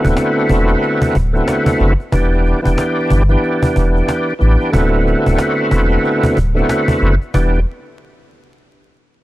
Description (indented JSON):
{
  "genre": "hip hop, boom-bap hip-hop",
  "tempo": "92 BPM",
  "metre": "4/4",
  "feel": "swing 60% on 16ths",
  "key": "E minor",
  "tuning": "A4 = 439 Hz",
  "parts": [
    { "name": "overdriven tonewheel organ", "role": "accompaniment", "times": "0.0-7.6 s", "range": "D3 to G4", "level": "-15 LUFS", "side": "equal", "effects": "chorus vibrato, slow rotary speaker, cassette tape" },
    { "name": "warm sub bass", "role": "bass", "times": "0.0-7.6 s", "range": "D1 to A1", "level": "-14 LUFS", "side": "equal", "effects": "none" },
    { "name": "cajon", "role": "drums", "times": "0.0-7.5 s", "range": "none", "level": "-18 LUFS", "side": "equal", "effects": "none" }
  ],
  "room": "little or no reverb",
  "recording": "dry, gritty hardware recording, vinyl crackle",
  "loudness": "-12 LUFS",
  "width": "side -16 dB against mid",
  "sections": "0.0-7.3 A section; 7.3-9.2 B section",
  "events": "none",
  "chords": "0.0 D13; 2.1 Em7; 4.7 D13; 7.3 Em7"
}